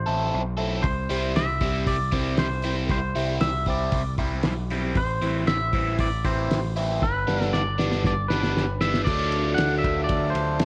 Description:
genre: indie rock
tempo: 117 BPM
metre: 4/4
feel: straight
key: unclear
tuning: A4 = 440 Hz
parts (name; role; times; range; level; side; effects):
- twangy electric guitar; melody; 0.0-10.7 s; B4 to F#5; -31 LUFS; equal; spring reverb
- growling picked electric bass; bass; 0.0-10.7 s; G1 to D2; -30 LUFS; equal; overdrive
- overdriven electric guitar; riff; 0.1-10.7 s; E3 to A4; -30 LUFS; equal; phaser
- cloth-damped thuddy drum kit; drums; 0.8-10.7 s; crash cymbal, hi-hat, kick drum, ride cymbal, snare drum; -30 LUFS; equal; none
room: light reverb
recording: worn, warbling old tape, cassette tape, warbly pitch drift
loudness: -24 LUFS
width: mono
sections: 0.0-9.1 A section; 9.1-10.7 B section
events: drum fill 7.0-9.1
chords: 0.0 Amadd9; 0.8 Cadd9; 5.0 Am; 7.0 G; 9.1 D

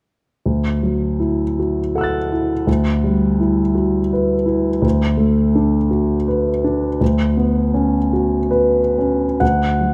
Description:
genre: classical, impressionist solo piano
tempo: 64-85 BPM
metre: 3/4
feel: rubato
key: D major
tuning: A4 = 440 Hz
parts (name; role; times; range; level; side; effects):
- clear concert grand piano; solo; 0.5-9.9 s; D2 to A6; -17 LUFS; equal; none
room: light reverb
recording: close, detailed microphones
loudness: -18 LUFS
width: mono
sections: 0.5-9.4 A section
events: none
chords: 0.5 Dadd9; 2.7 Em9/D; 4.8 D6; 7.0 Bmadd9/D; 9.4 D

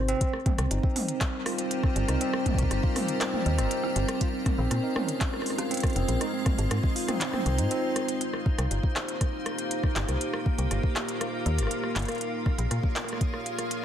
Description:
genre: IDM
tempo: 120 BPM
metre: 4/4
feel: straight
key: C phrygian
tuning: A4 = 440 Hz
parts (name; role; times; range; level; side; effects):
- barky tine electric piano; arpeggios; 0.0-8.2 s; C3 to C5; -31 LUFS; right 2 dB; fast stereo tremolo, digital delay
- metallic FM bass; bass; 0.0-12.8 s; F1 to Bb2; -27 LUFS; equal; none
- organic electronic drum kit; drums; 0.1-13.8 s; handclaps, hi-hat, rim click, toms; -32 LUFS; equal; none
- icy glass pad; sustained chords; 0.8-13.8 s; G3 to Db5; -32 LUFS; left 1 dB; chorus, built-in reverb
- electronic kick drum; drums; 0.2-13.3 s; none; -26 LUFS; equal; none
- bubbling stepped-filter texture; texture; 8.2-13.8 s; F4 to F5; -40 LUFS; equal; chorus, built-in reverb, sidechain pumping
room: light reverb, digital ambience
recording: dense, heavily limited modern master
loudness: -25 LUFS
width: side -10 dB against mid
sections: 0.0-8.2 A section; 8.2-13.8 B section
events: none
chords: 0.2 Cm7; 4.2 Bbm7; 6.2 Fm7/Ab; 8.2 Cm7; 12.2 Bbm7

